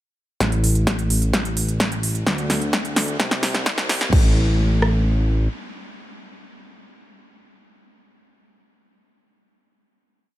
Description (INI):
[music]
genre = EDM, festival progressive house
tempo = 129 BPM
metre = 4/4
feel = straight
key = unclear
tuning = A4 = 440 Hz
[part]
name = fat analog bass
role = bass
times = 0.4-5.5 s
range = A1 to D2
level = -20 LUFS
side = equal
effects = sidechain pumping
[part]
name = big-room dance drum kit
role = drums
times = 0.4-4.9 s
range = kick drum, rim click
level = -20 LUFS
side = equal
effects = high-pass filter on kick, high-pass filter on snare, high-pass filter on room
[part]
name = big-room dance drum kit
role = drums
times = 0.4-4.2 s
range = crash cymbal, hi-hat, snare drum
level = -23 LUFS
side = equal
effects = overdrive
[sound]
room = light reverb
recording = high-pass filter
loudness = -18 LUFS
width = side -15 dB against mid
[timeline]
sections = 0.4-4.1 build; 4.1-7.8 final note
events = build-up 0.4-4.1; drum fill 0.4-4.1; filter sweep 0.4-4.1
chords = none